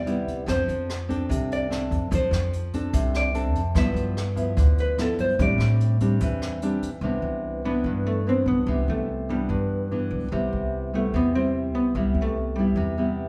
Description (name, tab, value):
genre	bossa nova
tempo	146 BPM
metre	4/4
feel	straight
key	unclear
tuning	A4 = 441 Hz
part	hollow-body jazz guitar	melody	0.0-13.3 s	G3 to E5	-29 LUFS	equal	none
part	nylon-string guitar	accompaniment	0.0-13.3 s	G2 to A4	-29 LUFS	equal	none
part	upright bass	bass	0.0-13.3 s	C2 to A2	-29 LUFS	equal	none
part	jazz brush drum kit	drums	0.1-6.9 s	hi-hat, kick drum, rim click	-34 LUFS	equal	none
room	moderate large studio reverb, RT60 1.2 s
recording	band playing live in one room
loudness	-24 LUFS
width	mono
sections	0.0-7.0 A section; 7.0-13.3 B section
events	hollow-body jazz guitar solo 0.0-7.0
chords	0.5 F6; 3.8 G6; 5.4 Am7; 7.0 Cmaj9; 10.3 Cmaj7